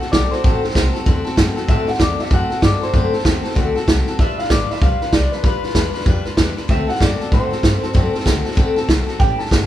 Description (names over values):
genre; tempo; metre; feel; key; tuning
rockabilly; 192 BPM; 4/4; swing 61% on 8ths; D mixolydian; A4 = 439 Hz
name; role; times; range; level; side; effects
electric guitar through a small old amp; melody; 0.0-9.7 s; B4 to A5; -24 LUFS; equal; none
picked steel-string acoustic guitar; accompaniment; 0.0-9.7 s; A2 to B4; -23 LUFS; left 3 dB; none
upright bass; bass; 0.0-9.7 s; G1 to A2; -22 LUFS; equal; none
vintage drum kit; drums; 0.0-9.6 s; hi-hat, kick drum, snare drum; -17 LUFS; equal; none
room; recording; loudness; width
light reverb; band playing live in one room; -15 LUFS; side -12 dB against mid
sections
0.0-9.7 A section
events
none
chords
0.0 D7; 4.2 G7; 6.7 D7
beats
0.12 | 0.43 0.75 1.06 1.37 | 1.69 2.00 2.31 2.62 | 2.94 3.25 3.56 3.88 | 4.19 4.50 4.82 5.13 | 5.44 5.75 6.07 6.38 | 6.69 7.01 7.32 7.63 | 7.95 8.26 8.57 8.88 | 9.20 9.51